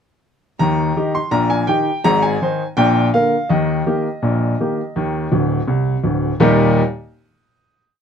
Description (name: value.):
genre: ragtime piano.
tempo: 83 BPM.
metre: 2/4.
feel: straight.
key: Eb major.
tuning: A4 = 440 Hz.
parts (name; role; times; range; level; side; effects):
clear upright piano; solo; 0.6-6.8 s; D1 to C6; -15 LUFS; equal; none.
room: light reverb.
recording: dark, warm production.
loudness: -15 LUFS.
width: side -7 dB against mid.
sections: 0.6-6.4 A section; 6.4-7.8 final chord.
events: upright piano fill 5.3-6.4.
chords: 0.6 Eb; 2.0 Ab; 2.8 Bb; 3.5 Eb.